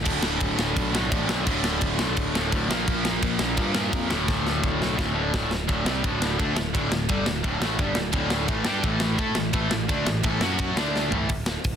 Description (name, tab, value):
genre	punk rock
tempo	171 BPM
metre	4/4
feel	straight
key	unclear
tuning	A4 = 439 Hz
part	cranked stack guitar	riff	0.0-11.3 s	D2 to A4	-25 LUFS	left 1 dB	overdrive
part	fuzz picked electric bass	bass	0.0-11.8 s	D1 to A2	-30 LUFS	equal	overdrive
part	tight metal drum kit	drums	0.1-11.7 s	crash cymbal, hi-hat, kick drum, ride cymbal, snare drum, toms	-26 LUFS	equal	soft clipping on kick
room	little or no reverb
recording	dense, heavily limited modern master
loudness	-22 LUFS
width	side -8 dB against mid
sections	0.0-5.7 A section; 5.7-11.3 B section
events	drum fill 4.3-5.7, 10.9-11.3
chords	0.1 D5; 2.7 Bb5; 4.1 D5; 8.5 A5; 10.4 F#5; 10.8 D5; 11.1 A5